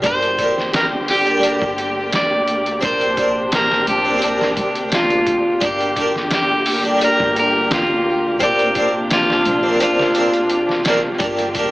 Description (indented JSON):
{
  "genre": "trip hop",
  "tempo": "86 BPM",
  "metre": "4/4",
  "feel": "swing 54% on 16ths",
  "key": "unclear",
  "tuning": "A4 = 439 Hz",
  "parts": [
    { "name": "harpsichord", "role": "accompaniment", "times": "0.0-11.7 s", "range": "G3 to Bb4", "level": "-21 LUFS", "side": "equal", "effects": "tremolo, tape echo" },
    { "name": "warm symphonic string section", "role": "sustained chords", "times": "0.0-11.7 s", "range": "C3 to G4", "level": "-24 LUFS", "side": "equal", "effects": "none" },
    { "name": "upright bass", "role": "bass", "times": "0.0-11.7 s", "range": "G1 to D2", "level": "-31 LUFS", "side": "equal", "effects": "none" },
    { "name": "trip hop sampler-style drum kit", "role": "drums", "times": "0.0-11.7 s", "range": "hi-hat, kick drum, snare drum", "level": "-24 LUFS", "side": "equal", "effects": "studio reverb, analog delay" },
    { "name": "flickering grainy texture", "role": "texture", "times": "0.0-11.7 s", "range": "D4 to G4", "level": "-31 LUFS", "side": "right 2 dB", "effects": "none" },
    { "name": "electric guitar at the edge of break-up", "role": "melody", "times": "0.1-10.8 s", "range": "F4 to D5", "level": "-18 LUFS", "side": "equal", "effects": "tape echo" }
  ],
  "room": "light reverb",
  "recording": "echo-heavy mix, AM radio sound",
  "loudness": "-15 LUFS",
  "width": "side -18 dB against mid",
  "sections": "0.0-11.2 A section",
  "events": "none",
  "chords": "0.0 Gm; 2.8 Bbadd9; 5.6 Gm; 8.4 Bbadd9; 11.2 Gm"
}